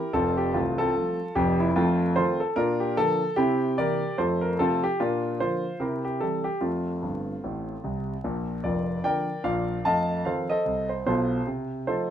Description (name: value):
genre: jazz, stride piano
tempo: 148 BPM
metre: 4/4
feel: swing 59% on 8ths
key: F major, Bb major from 8.2 s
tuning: A4 = 441 Hz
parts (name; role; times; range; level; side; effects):
- warm concert grand piano; solo; 0.0-12.1 s; C1 to A5; -24 LUFS; equal; none
room: moderate studio reverb, RT60 0.6 s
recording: minimal, uncompressed stereo recording, vinyl crackle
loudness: -24 LUFS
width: side -10 dB against mid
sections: 0.0-8.2 A section; 8.2-12.1 B section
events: grand piano fill 7.0-8.2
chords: 0.1 F; 1.8 F7; 2.6 Bb; 3.4 C7; 4.2 F; 5.0 Bb; 5.8 C; 6.6 F; 8.2 Bb; 9.9 F7; 11.5 F7/C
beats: | 0.14 0.55 0.95 1.36 | 1.76 2.17 2.57 2.98 | 3.38 3.79 4.19 4.60 | 5.00 5.41 5.81 6.22 | 6.62 7.03 7.43 7.83 | 8.24 8.64 9.05 9.45 | 9.86 10.26 10.66 11.07 | 11.47 11.88